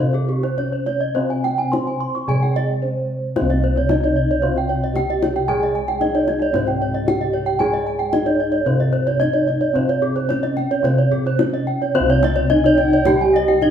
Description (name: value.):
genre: Balinese gamelan.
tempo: 111 BPM.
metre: 4/4.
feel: straight.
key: C pelog.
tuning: A4 = 440 Hz.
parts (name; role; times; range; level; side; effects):
gamelan-type bronze metallophone; melody; 0.0-13.7 s; C4 to C5; -22 LUFS; equal; none.
gamelan-type bronze metallophone; accompaniment; 0.0-13.7 s; C3 to Ab3-20c; -29 LUFS; right 1 dB; none.
gamelan-type bronze metallophone; arpeggios; 0.0-13.7 s; Ab4-20c to Db6+20c; -24 LUFS; left 5 dB; none.
gamelan-type bossed gongs; bass; 0.0-13.7 s; C2 to Ab4-20c; -22 LUFS; equal; none.
kendang; percussion; 0.1-13.7 s; none; -27 LUFS; left 3 dB; none.
gamelan-type bronze metallophone; arpeggios; 0.3-13.5 s; G4-30c to C6; -22 LUFS; right 5 dB; none.
bright reedy bansuri; second line; 12.5-13.7 s; Eb5-33c to Ab5; -27 LUFS; left 1 dB; none.
room: wet large studio reverb, RT60 1.3 s.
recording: band playing live in one room.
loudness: -16 LUFS.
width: side -8 dB against mid.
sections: 0.0-3.4 A section; 3.4-11.9 B section; 11.9-13.7 C section.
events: break 2.6-3.4.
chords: none.